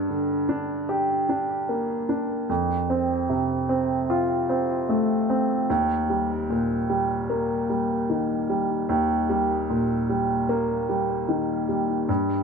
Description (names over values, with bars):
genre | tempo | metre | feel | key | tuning
pop | 75 BPM | 4/4 | straight | unclear | A4 = 440 Hz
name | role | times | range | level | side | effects
warm upright piano | solo | 0.0-12.4 s | Eb2 to G4 | -22 LUFS | equal | tape echo
room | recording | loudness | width
moderate small room reverb, RT60 0.5 s | none | -22 LUFS | side -5 dB against mid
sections
0.0-12.4 A section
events
none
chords
0.0 Gm; 2.5 F; 5.7 Eb